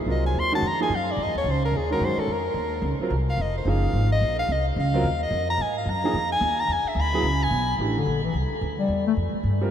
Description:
modal jazz; 218 BPM; 4/4; swing 60% on 8ths; F phrygian; A4 = 440 Hz
clear concert grand piano; accompaniment; 0.0-9.7 s; Eb3 to Bb4; -30 LUFS; right 2 dB
upright bass; bass; 0.0-9.7 s; F1 to Ab2; -25 LUFS; equal
breathy soprano saxophone; melody; 0.1-7.8 s; Ab4 to C6; -26 LUFS; left 1 dB
mellow bass clarinet; second line; 8.0-9.1 s; D3 to A3; -25 LUFS; left 5 dB
wet huge ambient reverb, RT60 7.7 s; in a vast, echoing space; -22 LUFS; side -9 dB against mid
0.0-7.8 A section; 7.8-9.7 A section
soprano saxophone solo 0.0-7.8; bass clarinet solo 7.8-9.7
0.0 Fm7; 6.7 E7; 7.8 Am7

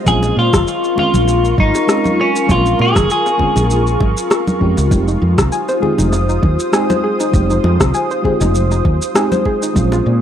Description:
sunset chillout; 99 BPM; 4/4; swing 54% on 16ths; F minor; A4 = 440 Hz
mellow FM electric piano; accompaniment; 0.0-10.2 s; Ab3 to G4; -22 LUFS; right 1 dB; chorus, auto-pan, tape echo
ethereal airy pad; sustained chords; 0.0-10.2 s; F4 to Eb6; -20 LUFS; left 1 dB; ensemble chorus, built-in reverb, vintage 12-bit sampler grit
twelve-string electric guitar; melody; 0.1-4.6 s; Db4 to Ab4; -16 LUFS; left 1 dB; tape echo
woody fretless electric bass; bass; 0.1-10.2 s; F1 to Bb2; -15 LUFS; equal; analog chorus
electronic kick drum; drums; 0.1-9.9 s; -17 LUFS; equal; overdrive
electronic shaker and rim click; drums; 0.1-10.0 s; -19 LUFS; equal; overdrive
congas and bongos; percussion; 0.1-10.0 s; -22 LUFS; equal
soft round pluck; arpeggios; 5.1-10.1 s; Eb4 to Ab5; -21 LUFS; left 1 dB; chorus, tape echo
light reverb; dry, gritty hardware recording, cassette tape; -12 LUFS; side -9 dB against mid
0.0-10.2 A section
0.1 Bbm7; 4.9 Fm7

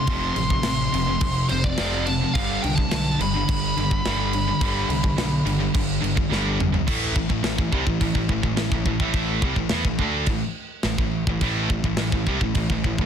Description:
heavy metal; 106 BPM; 4/4; straight; A minor; A4 = 440 Hz
high-gain lead guitar; melody; 0.0-6.3 s; C5 to C6; -27 LUFS; equal; distortion, ping-pong delay
distorted electric guitar; riff; 0.0-13.1 s; F2 to D4; -27 LUFS; right 12 dB; distortion
heavy high-gain guitar; riff; 0.0-13.1 s; F2 to D4; -27 LUFS; left 13 dB; distortion
fuzz picked electric bass; bass; 0.1-13.1 s; F1 to E2; -28 LUFS; equal; overdrive
tight metal drum kit; drums; 0.1-13.1 s; crash cymbal, kick drum, snare drum, toms; -25 LUFS; equal
studio ambience; dense, heavily limited modern master; -20 LUFS; side -8 dB against mid
0.0-6.9 A section; 6.9-13.1 B section
drum fill 6.3-6.9
0.0 F; 2.4 G; 6.9 Am

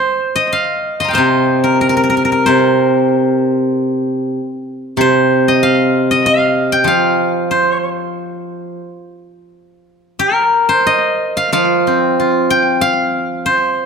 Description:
chinese traditional, Chinese solo plucked strings; 84-98 BPM; 4/4; rubato; C yu mode; A4 = 440 Hz
steel-string zither; solo; 0.0-13.9 s; C3 to C6; -12 LUFS; equal; slapback echo
moderate concert hall reverb, RT60 2.0 s; close, detailed microphones; -12 LUFS; side -6 dB against mid
0.0-10.2 A section; 10.2-13.9 B section

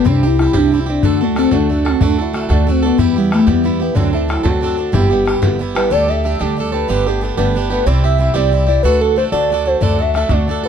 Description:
celtic folk, Celtic jig; 123 BPM (dotted quarters); 6/8; straight; A4 = 440 Hz
warm velvety synth lead; melody; 0.0-10.7 s; G3 to E5; -16 LUFS; left 2 dB; chorus, plate reverb
picked plugged-in swing-style acoustic guitar; accompaniment; 0.0-10.7 s; G2 to A4; -20 LUFS; right 6 dB
upright bass; bass; 0.1-10.7 s; G1 to E2; -18 LUFS; equal
bodhran; percussion; 0.1-5.8, 9.8-10.5 s; -20 LUFS; left 2 dB
light reverb; dark, warm production; -12 LUFS; side -8 dB against mid
0.0-5.9 A section; 5.9-10.7 A section
0.1 C; 1.0 D; 3.0 Em; 4.0 D7; 4.9 G6; 5.9 Dsus4; 6.9 Gadd9; 7.9 C; 8.8 D

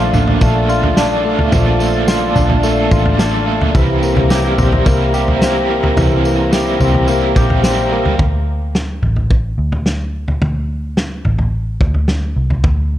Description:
dream pop; 108 BPM; 4/4; straight; D minor; A4 = 440 Hz
raw garage guitar; accompaniment; 0.0-8.2 s; C3 to Bb4; -20 LUFS; right 4 dB; overdrive, tremolo, wide subtle chorus
percussive tonewheel organ; sustained chords; 0.0-8.2 s; G4 to Bb5; -20 LUFS; left 1 dB; chorus vibrato, slow rotary speaker
direct-recorded clean electric guitar; arpeggios; 0.0-8.3 s; E3 to G4; -18 LUFS; left 2 dB; wide subtle chorus, digital delay
vintage muted picked electric bass; bass; 0.0-13.0 s; A1 to D2; -17 LUFS; equal
loose indie drum kit; drums; 0.1-12.8 s; kick drum, snare drum, tambourine, toms; -17 LUFS; equal
light reverb, small room ambience; dark, warm production; -12 LUFS; side -12 dB against mid
0.0-8.2 A section; 8.2-13.0 B section
0.0 Bbmaj7; 3.7 C7; 8.2 D5

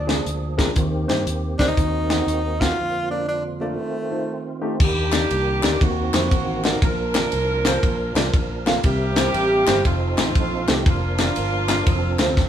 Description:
uptempo gospel; 119 BPM; 4/4; swing 65% on 8ths; Bb major; A4 = 441 Hz
breathy tenor saxophone; melody; 0.0-4.6 s; A3 to F4; -25 LUFS; equal
tonewheel organ; sustained chords; 0.0-12.5 s; F2 to Bb4; -29 LUFS; right 3 dB; slow rotary speaker, overdrive, chorus vibrato
fingered electric bass; bass; 0.0-12.5 s; F1 to G2; -26 LUFS; equal
dark baby grand piano; accompaniment; 0.1-12.3 s; Bb2 to F5; -27 LUFS; left 1 dB
tight funk drum kit; drums; 0.1-12.5 s; crash cymbal, hi-hat, kick drum, ride cymbal, snare drum; -21 LUFS; equal
mellow saxophone section; melody; 4.8-12.5 s; A3 to Bb4; -23 LUFS; right 1 dB
group handclap; percussion; 5.1-12.3 s; -31 LUFS; left 5 dB
moderate stone room reverb, RT60 1.0 s; band playing live in one room; -18 LUFS; side -10 dB against mid
0.0-4.8 A section; 4.8-12.5 B section
break 2.8-4.8
0.0 Bb7; 0.8 Eb6; 1.8 Ebm6; 2.8 Bb/F; 3.8 F7; 4.8 Ebmaj7; 5.8 Ebm6; 6.8 Bbmaj7; 8.8 C7; 9.9 F7; 10.9 Bb/F; 11.9 F

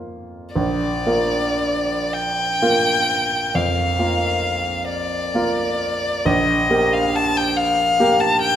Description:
classical, romantic duo for violin and grand piano; 37-48 BPM (dotted quarters); 12/8; rubato; Bb major; A4 = 440 Hz
clear grand piano; accompaniment; 0.0-8.6 s; Bb1 to Bb4; -21 LUFS; right 2 dB
rich violin; melody; 0.6-8.6 s; D5 to A5; -19 LUFS; left 2 dB
wet recital hall reverb, RT60 1.6 s; minimal, uncompressed stereo recording; -17 LUFS; side -10 dB against mid
0.6-8.6 A section
0.0 Bb5; 0.6 Bb; 6.3 Eb/Bb

